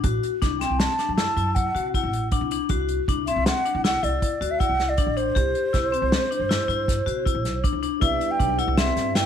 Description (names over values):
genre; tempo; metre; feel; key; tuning
progressive instrumental, band music in an uneven meter; 158 BPM; 7/4; straight; C lydian; A4 = 444 Hz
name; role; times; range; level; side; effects
vibraphone with hard mallets; arpeggios; 0.0-9.3 s; C4 to G4; -27 LUFS; left 11 dB; none
upright bass; bass; 0.0-9.2 s; A1 to C3; -28 LUFS; right 2 dB; none
unplugged drum kit; drums; 0.0-9.2 s; hi-hat, kick drum, snare drum; -25 LUFS; right 1 dB; none
mellow hollow concert flute; melody; 0.6-9.3 s; C5 to A5; -25 LUFS; right 2 dB; none
tonewheel organ; accompaniment; 8.0-9.3 s; G3 to E4; -30 LUFS; right 14 dB; slow rotary speaker
room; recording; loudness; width
moderate plate reverb, RT60 1.4 s, small room ambience; 1960s-style stereo with parts hard left and right; -21 LUFS; side -8 dB against mid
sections
0.0-8.0 A section; 8.0-9.3 B section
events
none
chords
0.0 Am6; 5.4 C; 8.0 Cmaj7